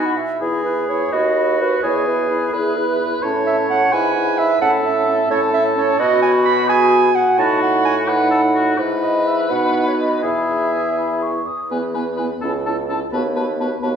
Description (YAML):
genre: quick classical-period movement for wind quintet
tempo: 86 BPM (dotted quarters)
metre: 6/8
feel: straight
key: E major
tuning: A4 = 440 Hz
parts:
  - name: mellow hollow silver concert flute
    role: melody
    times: 0.0-13.9 s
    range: G#5 to D#6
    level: -26 LUFS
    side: left 4 dB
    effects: none
  - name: warm oboe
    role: second line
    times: 0.0-13.9 s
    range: F#4 to C#5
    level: -23 LUFS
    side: left 1 dB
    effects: none
  - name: dark French horn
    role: accompaniment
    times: 0.0-13.9 s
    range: B3 to F#4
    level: -23 LUFS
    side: left 2 dB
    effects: none
  - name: dark clarinet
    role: accompaniment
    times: 0.0-13.9 s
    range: E4 to B5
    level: -19 LUFS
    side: right 4 dB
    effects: none
  - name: mellow bassoon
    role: bass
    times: 0.0-14.0 s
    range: C#2 to B2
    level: -22 LUFS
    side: right 1 dB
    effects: none
room: wet recital hall reverb, RT60 1.9 s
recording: recorded in a church or concert hall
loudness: -15 LUFS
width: side -7 dB against mid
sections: 0.4-11.7 A section; 11.7-14.0 B section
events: none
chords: 0.4 E; 1.1 B/D#; 1.8 E; 3.2 A; 3.9 E/G#; 4.6 A; 6.0 B5; 7.4 B7/A; 8.8 E/G#; 9.5 B; 10.2 E; 11.7 E5; 12.4 A/C#; 13.1 B7/D#